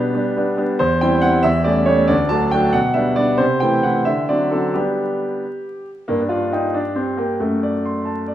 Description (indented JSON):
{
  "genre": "classical-period piano sonatina",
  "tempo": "91 BPM (dotted quarters)",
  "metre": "6/8",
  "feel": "straight",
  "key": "G major",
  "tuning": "A4 = 440 Hz",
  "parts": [
    { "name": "bright concert grand piano", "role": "solo", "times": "0.0-8.3 s", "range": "D2 to C6", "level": "-16 LUFS", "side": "equal", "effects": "none" }
  ],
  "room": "moderate recital hall reverb, RT60 1.6 s",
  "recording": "vinyl crackle",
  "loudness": "-16 LUFS",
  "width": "side -12 dB against mid",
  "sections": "0.0-6.1 A section; 6.1-8.3 B section",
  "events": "none",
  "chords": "0.0 G/B; 0.8 C/E; 1.4 A7/E; 2.1 D; 2.8 G/B; 3.4 Am/C; 4.1 D7; 4.7 G; 6.1 G5; 7.4 D7/F#"
}